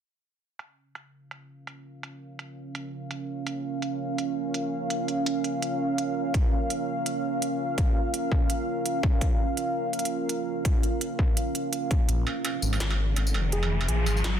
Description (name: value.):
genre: half-time drum and bass.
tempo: 167 BPM.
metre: 4/4.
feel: swing 57% on 16ths, half-time.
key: Bb minor.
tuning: A4 = 437 Hz.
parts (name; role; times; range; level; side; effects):
deep dark ambient pad; sustained chords; 2.3-14.4 s; Db4 to F5; -29 LUFS; right 2 dB; chorus, built-in reverb, sidechain pumping.
industrial drum kit; drums; 0.6-14.3 s; hi-hat, snare drum, struck metal, tambourine; -32 LUFS; right 3 dB; low-pass filter on hats, studio ambience, low-pass filter on perc, low-pass filter on snare.
electronic kick drum; drums; 6.3-12.0 s; none; -24 LUFS; equal; distortion, studio ambience.
phased detuned saw bass; bass; 12.1-14.4 s; F1 to Bb1; -26 LUFS; left 1 dB; phaser.
riser; sound effects; 12.6-14.4 s; none; -33 LUFS; right 1 dB; none.
soft struck synth lead; melody; 13.5-14.2 s; Ab4; -33 LUFS; right 1 dB; chorus, digital delay.
room: moderate echo chamber reverb, RT60 1.3 s, digital ambience.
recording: dense, heavily limited modern master.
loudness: -25 LUFS.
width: side -9 dB against mid.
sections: 0.6-12.1 A section; 12.1-14.4 B section.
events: build-up 12.1-14.4; riser 12.6-14.4.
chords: 0.6 Bbm.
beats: | 0.59 0.95 1.31 1.67 | 2.03 2.39 2.75 3.11 | 3.47 3.83 4.19 4.54 | 4.91 5.26 5.62 5.98 | 6.34 6.70 7.06 7.42 | 7.78 8.14 8.50 8.86 | 9.22 9.57 9.94 10.29 | 10.65 11.01 11.37 11.73 | 12.09 12.45 12.81 13.17 | 13.53 13.89 14.25.